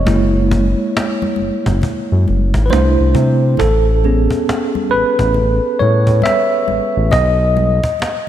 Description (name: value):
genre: R&B, neo-soul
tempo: 68 BPM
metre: 4/4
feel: swing 63% on 16ths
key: unclear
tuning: A4 = 440 Hz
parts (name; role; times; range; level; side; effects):
- tine electric piano; accompaniment; 0.0-8.3 s; G#3 to E5; -16 LUFS; right 1 dB; medium stereo tremolo
- smooth synth bass; bass; 0.0-7.8 s; F#1 to C3; -14 LUFS; equal; none
- cajon; drums; 0.1-8.3 s; none; -23 LUFS; equal; none
- congas; percussion; 0.1-8.3 s; none; -26 LUFS; left 7 dB; none
room: moderate lush hall reverb, RT60 2.6 s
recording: dreamy mix soaked in reverb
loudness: -12 LUFS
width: side -11 dB against mid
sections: 0.0-3.6 A section; 3.6-8.3 B section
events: tine electric piano solo 0.0-3.6, 3.6-8.3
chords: 0.1 F#9; 2.7 C69; 3.6 Amaj9; 7.1 B